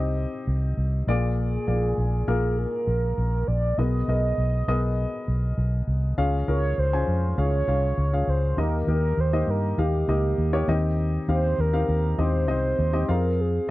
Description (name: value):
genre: piano-driven pop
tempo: 100 BPM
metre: 4/4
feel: straight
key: unclear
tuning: A4 = 443 Hz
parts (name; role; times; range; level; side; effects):
- dark baby grand piano; accompaniment; 0.0-13.7 s; Bb2 to Ab5; -28 LUFS; left 2 dB; none
- vintage muted fingered electric bass; bass; 0.0-13.6 s; Bb1 to G2; -24 LUFS; equal; none
- mellow horn-like synth lead; melody; 1.4-13.7 s; G4 to Eb5; -28 LUFS; right 2 dB; chorus
room: little or no reverb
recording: dry, close 1970s-style studio recording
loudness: -22 LUFS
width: side -17 dB against mid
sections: 0.0-6.2 A section; 6.2-13.7 B section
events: none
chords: 0.0 Cm; 1.1 Bb7; 3.8 Abmadd9/Cb; 6.2 Db; 8.6 Eb; 10.7 Cm/Eb; 13.1 Fm